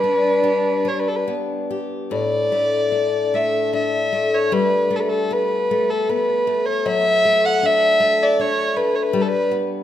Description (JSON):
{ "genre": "celtic folk, Celtic slow air", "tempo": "77 BPM", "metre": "3/4", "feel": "uneven beats, rubato", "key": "A mixolydian", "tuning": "A4 = 435 Hz", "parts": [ { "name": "dark fiddle", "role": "melody", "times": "0.0-9.5 s", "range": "A4 to F#5", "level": "-18 LUFS", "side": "equal", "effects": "none" }, { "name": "dark cello", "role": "second line", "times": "0.0-1.6 s", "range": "D4", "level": "-28 LUFS", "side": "right 5 dB", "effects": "none" }, { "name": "picked steel-string acoustic guitar", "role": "accompaniment", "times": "0.0-9.8 s", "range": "A2 to G4", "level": "-22 LUFS", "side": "left 4 dB", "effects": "none" } ], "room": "light reverb", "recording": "minimal, uncompressed stereo recording", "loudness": "-17 LUFS", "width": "side -11 dB against mid", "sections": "0.0-2.1 A section; 2.1-9.8 B section", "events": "none", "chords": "0.0 G; 2.1 Asus4; 4.5 Gadd9; 6.8 D/F#; 9.1 G", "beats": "0.43 1.27 | 2.11 2.92 3.72 | 4.50 5.30 6.08 | 6.85 7.62 8.37 | 9.12" }